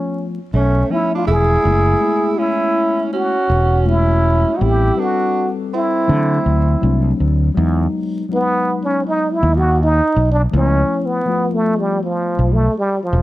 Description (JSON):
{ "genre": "hip hop", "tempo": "81 BPM", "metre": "4/4", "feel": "swing 64% on 16ths", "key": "E major", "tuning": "A4 = 440 Hz", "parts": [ { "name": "trombone with plunger mute", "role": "melody", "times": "0.0-13.2 s", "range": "E#3 to G#4", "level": "-17 LUFS", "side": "right 1 dB", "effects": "none" }, { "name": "mellow tine electric piano", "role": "accompaniment", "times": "0.0-12.6 s", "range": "E3 to B4", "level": "-22 LUFS", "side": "left 4 dB", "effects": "none" }, { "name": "growling tenor saxophone", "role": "second line", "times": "0.5-7.2 s", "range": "A3 to E4", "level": "-25 LUFS", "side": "right 6 dB", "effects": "none" }, { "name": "fretless electric bass", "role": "bass", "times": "0.5-13.2 s", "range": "E1 to D3", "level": "-15 LUFS", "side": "equal", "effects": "none" } ], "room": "studio ambience", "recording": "vinyl crackle", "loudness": "-14 LUFS", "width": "side -16 dB against mid", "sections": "0.0-7.6 A section; 7.6-13.2 B section", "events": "trombone solo 7.6-13.2", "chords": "0.0 C#7alt; 1.6 F#m11; 4.6 Am7; 6.1 D9; 7.6 Emaj9 (rootless); 10.5 C#7#9b13 (rootless)" }